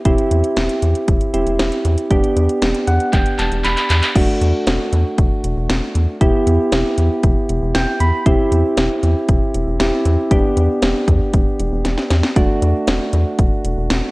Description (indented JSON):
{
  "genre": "synth-pop",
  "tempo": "117 BPM",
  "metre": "4/4",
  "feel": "straight",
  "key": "unclear",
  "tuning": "A4 = 441 Hz",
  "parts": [
    { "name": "soft electric-piano-like synth keys", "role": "accompaniment", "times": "0.1-14.1 s", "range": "A3 to B5", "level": "-18 LUFS", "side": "right 1 dB", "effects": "chorus" },
    { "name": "rubbery square bass", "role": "bass", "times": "0.1-14.0 s", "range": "E1 to E2", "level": "-18 LUFS", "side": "equal", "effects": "none" },
    { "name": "house drum kit", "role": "drums", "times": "0.1-14.0 s", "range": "crash cymbal, handclaps, hi-hat, kick drum, snare drum", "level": "-18 LUFS", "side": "equal", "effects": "none" }
  ],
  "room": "light reverb",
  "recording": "worn, warbling old tape, cassette tape, warbly pitch drift",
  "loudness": "-14 LUFS",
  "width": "side -22 dB against mid",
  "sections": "0.0-4.2 A section; 4.2-14.1 B section",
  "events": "synth keys fill 2.6-4.2, 7.5-8.3; drum fill 3.1-4.2, 11.8-12.4",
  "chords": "0.1 C/E; 2.1 G/E; 4.2 D/E; 6.2 Em; 8.3 C/E; 10.3 G/E; 12.4 D/E"
}